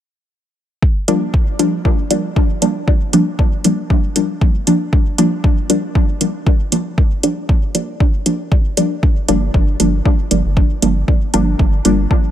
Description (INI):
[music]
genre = dub techno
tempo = 117 BPM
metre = 4/4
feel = swing 55% on 16ths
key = G minor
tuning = A4 = 441 Hz
[part]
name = electronic kick drum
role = drums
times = 0.8-12.2 s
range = none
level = -14 LUFS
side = equal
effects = none
[part]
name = filtered dub chord stab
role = stabs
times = 1.1-12.0 s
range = F3 to D4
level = -17 LUFS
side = equal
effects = chorus, phaser, sidechain pumping, dub echo
[part]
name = electronic hi-hat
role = drums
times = 1.1-12.0 s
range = none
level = -19 LUFS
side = right 3 dB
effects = none
[part]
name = round analog bass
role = bass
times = 9.3-12.1 s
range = G1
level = -18 LUFS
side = equal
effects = sidechain pumping
[sound]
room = little or no reverb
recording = none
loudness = -13 LUFS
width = side -11 dB against mid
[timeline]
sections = 0.8-12.3 A section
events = none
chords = 0.8 Gm7